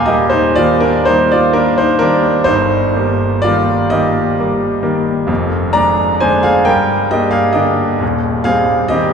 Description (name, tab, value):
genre	classical, romantic nocturne for solo piano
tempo	40-46 BPM (dotted quarters)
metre	6/8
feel	rubato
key	Eb major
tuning	A4 = 443 Hz
part	clear grand piano	solo	0.0-9.1 s	Eb1 to Bb5	-11 LUFS	equal	none
room	wet cathedral reverb, RT60 4.2 s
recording	recorded in a church or concert hall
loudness	-11 LUFS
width	side -6 dB against mid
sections	0.0-9.1 A section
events	none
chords	0.0 Eb; 2.5 Eb/G; 5.3 Ddim/F; 6.7 Gm; 8.0 Cm/Eb